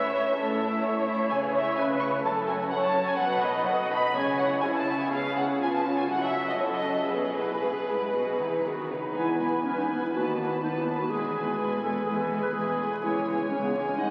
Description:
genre	quick classical-period movement for symphony orchestra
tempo	115-129 BPM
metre	4/4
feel	rubato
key	E major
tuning	A4 = 442 Hz
part	muted chamber violin section	melody	0.0-14.1 s	B4 to C#6	-32 LUFS	equal	none
part	muted studio violin section	second line	0.0-14.1 s	A3 to E5	-35 LUFS	equal	none
part	muted chamber viola section	accompaniment	0.0-14.1 s	G#3 to D#5	-33 LUFS	equal	none
part	muted chamber cello section	bass	0.0-14.1 s	B#1 to E3	-37 LUFS	equal	none
part	muted studio double bass section	bass	1.3-14.1 s	E1 to D#2	-45 LUFS	equal	none
part	warm clarinet	second line	9.2-14.1 s	B3 to B4	-32 LUFS	equal	none
room	wet cathedral reverb, RT60 4.9 s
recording	very old 78 rpm record, vinyl crackle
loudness	-27 LUFS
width	mono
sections	0.0-9.2 A section; 9.2-14.1 B section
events	none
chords	0.0 A; 1.3 C#m7; 2.2 F#m; 3.2 B7; 4.2 C#m; 5.1 C#7; 6.1 F#m7; 7.1 E/B; 8.1 B; 9.2 E; 10.1 B7/D#; 11.1 E; 13.0 C#m

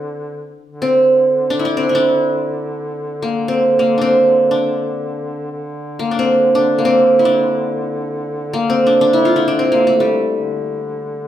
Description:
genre	Turkish makam ensemble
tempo	free time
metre	none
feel	none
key	D makam ussak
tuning	A4 = 441 Hz
part	qanun	melody	0.0-11.3 s	G3 to F4	-14 LUFS	equal	none
part	warm duduk	drone	0.0-11.3 s	D3	-26 LUFS	right 1 dB	none
room	wet large studio reverb, RT60 0.9 s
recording	band playing live in one room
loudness	-13 LUFS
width	side -11 dB against mid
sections	0.0-11.3 A section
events	none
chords	none

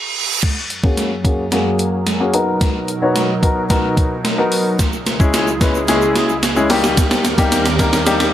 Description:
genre	dance-pop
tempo	110 BPM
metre	4/4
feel	straight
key	B major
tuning	A4 = 440 Hz
part	reverse cymbal and riser	sound effects	0.0-8.3 s	none	-26 LUFS	right 4 dB	none
part	lush unison pad	sustained chords	0.4-8.3 s	C#2 to A#4	-22 LUFS	right 2 dB	chorus, sidechain pumping, low-pass filter
part	gated 80s digital drum machine	drums	0.4-8.3 s	crash cymbal, hi-hat, kick drum, snare drum	-17 LUFS	equal	gated reverb, gated reverb snare, overdrive
part	warm grand piano	accompaniment	0.8-8.3 s	G3 to C#5	-18 LUFS	left 2 dB	sidechain pumping, low-pass filter
part	egg shaker	percussion	4.8-8.3 s	none	-32 LUFS	right 8 dB	none
room	light reverb, digital ambience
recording	none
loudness	-14 LUFS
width	side -11 dB against mid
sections	0.4-8.3 A section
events	reverse cymbal 0.0-0.4; stop 0.0-0.4; build-up 0.4-8.3; drum fill 0.4-8.3; filter sweep 0.4-8.3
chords	0.4 F#add9; 2.3 Bmaj7; 4.8 C#m; 6.7 D#

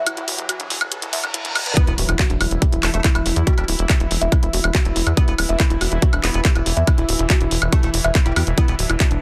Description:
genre	psychedelic trance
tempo	141 BPM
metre	4/4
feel	straight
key	E minor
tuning	A4 = 439 Hz
part	bubbling stepped-filter texture	sustained chords	0.0-9.2 s	E3 to E4	-31 LUFS	equal	chorus, built-in reverb, sidechain pumping
part	woody wave-folded pluck	riff	0.0-9.2 s	D4 to E5	-29 LUFS	equal	chorus, sidechain pumping, digital delay
part	tight sequencer bass	bass	0.0-9.2 s	D1 to E2	-24 LUFS	equal	high-pass filter
part	riser, reverse cymbal and sub drop	sound effects	0.0-3.5 s	none	-31 LUFS	equal	none
part	garage drum kit	drums	0.1-9.2 s	handclaps, hi-hat, woodblock	-25 LUFS	equal	none
part	metallic wobble bass	second line	1.8-8.7 s	G3 to B3	-34 LUFS	equal	chorus, sidechain pumping, high-pass filter, delay
part	electronic kick drum	drums	1.8-9.1 s	none	-18 LUFS	equal	none
room	digital ambience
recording	dense, heavily limited modern master, high-pass filter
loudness	-19 LUFS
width	mono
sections	0.0-1.8 A section; 1.8-9.2 B section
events	build-up 0.0-1.8; riser 0.0-1.8; filter sweep on synth arpeggio sound 0.0-1.8; reverse cymbal 0.9-1.8; drop 1.8-9.2; impact 1.8-3.5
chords	0.0 E5

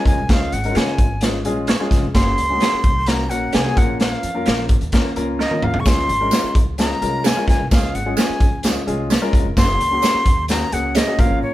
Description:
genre	uptempo 1960s-style soul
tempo	129 BPM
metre	4/4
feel	straight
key	Db major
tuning	A4 = 440 Hz
part	breathy bright jazz flute	melody	0.0-11.5 s	Db5 to Db6	-22 LUFS	equal	none
part	warm upright piano	accompaniment	0.0-11.5 s	Ab3 to Bb4	-23 LUFS	left 2 dB	none
part	upright bass	bass	0.1-11.4 s	F1 to Db3	-26 LUFS	equal	none
part	raw garage drum kit	drums	0.1-11.3 s	hi-hat, kick drum, snare drum, toms	-18 LUFS	equal	none
part	direct-recorded clean electric guitar	stabs	0.8-11.1 s	Ab3 to Db5	-27 LUFS	right 4 dB	phaser
part	tambourine	percussion	5.9-11.1 s	none	-32 LUFS	right 5 dB	none
room	light reverb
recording	band playing live in one room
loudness	-15 LUFS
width	side -15 dB against mid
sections	0.0-11.5 A section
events	drum fill 5.4-5.9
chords	0.0 Db; 2.1 Gbadd9; 3.8 Bbm; 5.9 Db; 9.6 Gbadd9

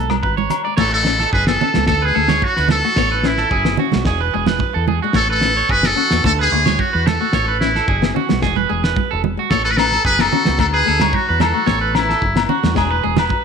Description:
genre	highlife guitar band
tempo	110 BPM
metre	4/4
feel	straight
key	A major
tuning	A4 = 440 Hz
part	nylon-string guitar	accompaniment	0.0-13.2 s	G#3 to C#4	-24 LUFS	left 17 dB	none
part	electric guitar at the edge of break-up	arpeggios	0.0-13.4 s	F#4 to D5	-22 LUFS	right 12 dB	slapback echo
part	deep dub fingered electric bass	bass	0.0-13.3 s	E1 to E2	-22 LUFS	equal	none
part	cloth-damped thuddy drum kit	drums	0.1-13.4 s	crash cymbal, hi-hat, kick drum, rim click, snare drum	-21 LUFS	equal	none
part	agogo bells	percussion	0.1-0.7, 9.8-13.3 s	none	-22 LUFS	left 15 dB	none
part	congas	percussion	0.1-13.4 s	none	-22 LUFS	right 11 dB	none
part	trumpet with metal mute	melody	0.8-12.5 s	E4 to B4	-18 LUFS	left 2 dB	none
room	light reverb, studio reverb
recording	1960s-style stereo with parts hard left and right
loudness	-14 LUFS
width	side -6 dB against mid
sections	0.8-13.4 A section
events	none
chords	0.0 E (rootless); 0.8 A; 1.9 D; 3.0 A; 4.1 E; 5.2 A; 6.3 D; 7.3 A; 8.4 E; 9.5 A; 10.6 D; 11.7 A; 12.8 E

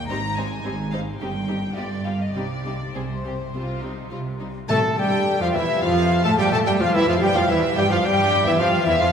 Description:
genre	quick classical-period movement for symphony orchestra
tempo	105 BPM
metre	4/4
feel	uneven beats, rubato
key	C minor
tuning	A4 = 440 Hz
part	warm studio violin section	melody	0.0-9.1 s	C5 to Bb5	-28 LUFS	left 2 dB	none
part	rich studio cello section	bass	0.0-9.1 s	G2 to A3	-28 LUFS	right 1 dB	none
part	warm studio double bass section	bass	0.0-9.1 s	G1 to A2	-28 LUFS	right 2 dB	none
part	warm studio violin section	second line	0.1-9.1 s	Eb4 to A5	-28 LUFS	left 2 dB	none
part	rich studio viola section	accompaniment	0.1-9.1 s	E3 to C4	-28 LUFS	right 1 dB	none
part	concert flute	second line	4.7-9.1 s	E5 to A5	-28 LUFS	left 2 dB	none
part	mellow bassoon	accompaniment	4.7-9.1 s	E3 to A3	-26 LUFS	right 2 dB	none
part	dark French horn section	sustained chords	4.7-9.1 s	E4 to A4	-27 LUFS	left 2 dB	none
part	clear trumpet	stabs	4.7-9.1 s	E4 to A4	-26 LUFS	equal	none
part	timpani	percussion	4.7-5.5 s	C3	-31 LUFS	left 1 dB	none
room	wet church reverb, RT60 3.4 s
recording	recorded in a church or concert hall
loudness	-19 LUFS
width	side -7 dB against mid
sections	0.0-4.7 A section; 4.7-9.1 A section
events	none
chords	0.1 Abmaj7; 1.2 Cm/G; 1.8 G7; 2.4 Cm; 4.7 Fmaj9; 5.8 Fadd9; 6.9 Em

